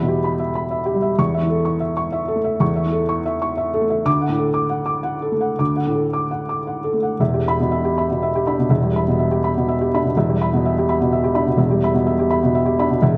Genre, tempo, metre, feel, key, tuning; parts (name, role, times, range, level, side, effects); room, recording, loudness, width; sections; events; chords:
neoclassical minimalist piano; 109-129 BPM; 3/4; rubato; E dorian; A4 = 440 Hz
felt-muted upright piano; solo; 0.0-13.2 s; E1 to B6; -19 LUFS; equal
moderate concert hall reverb, RT60 2.4 s; dark, warm production; -19 LUFS; mono
0.0-7.2 A section; 7.2-13.2 B section
0.0 Em; 1.2 A/E; 4.1 D; 7.2 Em